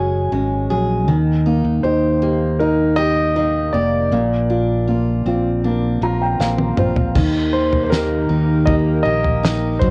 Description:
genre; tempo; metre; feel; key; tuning
pop ballad; 79 BPM; 4/4; straight; Eb major; A4 = 440 Hz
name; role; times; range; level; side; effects
dark upright piano; accompaniment; 0.0-9.9 s; Eb3 to Bb5; -22 LUFS; equal; none
picked steel-string acoustic guitar; arpeggios; 0.0-9.9 s; Bb2 to Ab4; -27 LUFS; equal; none
fingered electric bass; bass; 0.0-9.9 s; F1 to Eb2; -23 LUFS; equal; none
warm concert grand piano; melody; 1.8-9.9 s; Bb4 to Eb5; -24 LUFS; equal; none
damped 70s drum kit; drums; 6.4-9.9 s; crash cymbal, kick drum, snare drum, toms; -22 LUFS; equal; cassette tape
chorused pulse-width pad; sustained chords; 7.2-9.9 s; Db3 to Bb4; -26 LUFS; equal; none
room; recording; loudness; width
light reverb, small room ambience; home recording on cassette; -18 LUFS; mono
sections
0.0-7.2 A section; 7.2-9.9 B section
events
upright piano fill 5.6-7.2; drum fill 6.4-7.2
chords
0.0 Gbsus2; 1.1 Eb; 4.1 Bbadd9; 7.2 Eb

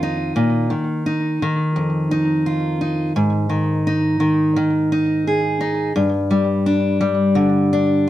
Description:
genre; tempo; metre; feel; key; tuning
folk; 86 BPM; 4/4; straight; unclear; A4 = 440 Hz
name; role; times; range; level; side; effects
fingerpicked steel-string acoustic guitar; solo; 0.0-8.1 s; F2 to Ab4; -16 LUFS; equal; slapback echo
room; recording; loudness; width
moderate studio reverb, RT60 0.6 s; none; -16 LUFS; side -13 dB against mid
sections
0.0-8.1 A section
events
none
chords
0.0 Bbsus4; 3.2 Ab5; 6.0 G5

